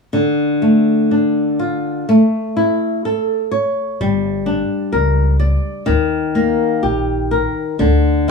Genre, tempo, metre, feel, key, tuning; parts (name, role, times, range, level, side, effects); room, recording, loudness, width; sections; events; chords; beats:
fado-style ballad; 62 BPM; 2/4; rubato; D harmonic minor; A4 = 442 Hz
flamenco guitar; accompaniment; 0.1-8.3 s; D3 to D5; -15 LUFS; left 1 dB
upright bass; bass; 4.0-8.3 s; G1 to Eb2; -18 LUFS; left 1 dB
moderate studio reverb, RT60 0.8 s; band playing live in one room, faint mains hum; -14 LUFS; side -4 dB against mid
0.1-7.8 A section
0.1 Dm; 2.1 A; 4.0 Gm; 5.9 Eb; 7.8 N.C.
| 0.12 1.10 | 2.08 3.05 | 4.00 4.93 | 5.86 6.82 | 7.79